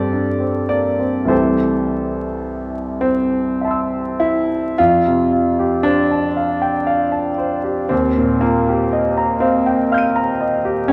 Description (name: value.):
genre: classical, impressionist solo piano.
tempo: 33-41 BPM (dotted quarters).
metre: 6/8.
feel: rubato.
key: C major, F mixolydian from 4.8 s.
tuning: A4 = 436 Hz.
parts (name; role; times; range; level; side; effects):
clear concert grand piano; solo; 0.0-10.9 s; C2 to Eb7; -18 LUFS; equal; none.
room: wet recital hall reverb, RT60 1.6 s.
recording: vinyl crackle.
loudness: -18 LUFS.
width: mono.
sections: 0.0-4.8 A section; 4.8-10.9 B section.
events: none.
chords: 0.0 Gsus24; 1.3 C6; 4.8 Fadd9; 7.9 Ebadd9.